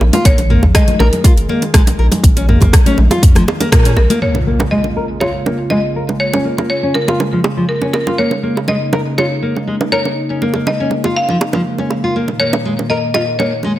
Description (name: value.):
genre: afro house.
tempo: 121 BPM.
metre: 4/4.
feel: straight.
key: Bb minor pentatonic.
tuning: A4 = 440 Hz.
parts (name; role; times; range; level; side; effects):
buzzing marimba with hard mallets; melody; 0.0-13.8 s; Bb4 to F5; -19 LUFS; left 1 dB; tape echo.
warm analog pad; sustained chords; 0.0-13.8 s; Bb2 to F4; -22 LUFS; equal; chorus, sidechain pumping.
round analog bass; bass; 0.0-4.1 s; Ab1 to Bb2; -13 LUFS; equal; sidechain pumping.
bongos; percussion; 0.0-13.7 s; none; -20 LUFS; right 3 dB; none.
nylon-string guitar; arpeggios; 0.1-13.7 s; F3 to Bb4; -19 LUFS; left 1 dB; sidechain pumping, low-pass filter, tape echo.
house drum kit; drums; 0.1-4.2 s; hi-hat, rim click, toms; -17 LUFS; right 1 dB; none.
congas; percussion; 0.1-4.2 s; none; -21 LUFS; left 3 dB; none.
electronic kick drum; drums; 0.3-3.8 s; none; -10 LUFS; equal; none.
impact; sound effects; 4.2-6.2 s; none; -22 LUFS; equal; none.
room: light reverb, small room ambience.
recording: none.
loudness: -11 LUFS.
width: side -14 dB against mid.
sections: 0.0-4.2 A section; 4.2-13.8 B section.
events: band accent 3.7; impact 4.2-6.2; filter sweep on nylon-string guitar 4.2-13.8.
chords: 0.0 Eb5; 4.2 Bbm7; 12.2 Eb5/Bb.